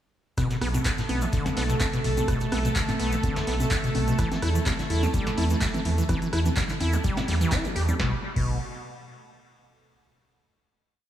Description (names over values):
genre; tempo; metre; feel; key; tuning
acid house; 126 BPM; 4/4; swing 54% on 16ths; B minor; A4 = 440 Hz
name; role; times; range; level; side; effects
lush unison pad; sustained chords; 0.4-8.0 s; A3 to A4; -32 LUFS; right 1 dB; chorus, sidechain pumping
acid bass, saw; riff; 0.4-8.6 s; B1 to G4; -28 LUFS; equal; overdrive, cassette tape, diffuse ambient delay
booming analog drum machine; drums; 0.4-8.4 s; congas, crash cymbal, handclaps, hi-hat, rim click, snare drum; -31 LUFS; equal; none
electronic kick drum; drums; 0.4-8.4 s; none; -29 LUFS; equal; none
vintage brush drum kit; drums; 0.4-7.9 s; hi-hat, snare drum; -40 LUFS; equal; none
tube shaker; percussion; 0.4-8.0 s; none; -45 LUFS; left 3 dB; none
round analog bass; bass; 0.6-8.6 s; B1 to E2; -26 LUFS; right 1 dB; sidechain pumping
room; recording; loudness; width
moderate lush hall reverb, RT60 1.8 s, small room ambience; dreamy mix soaked in reverb; -23 LUFS; side -11 dB against mid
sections
0.4-8.0 drop; 8.0-9.9 final chord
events
drop 0.4-8.0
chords
0.4 Bm7; 4.2 Em; 8.0 N.C.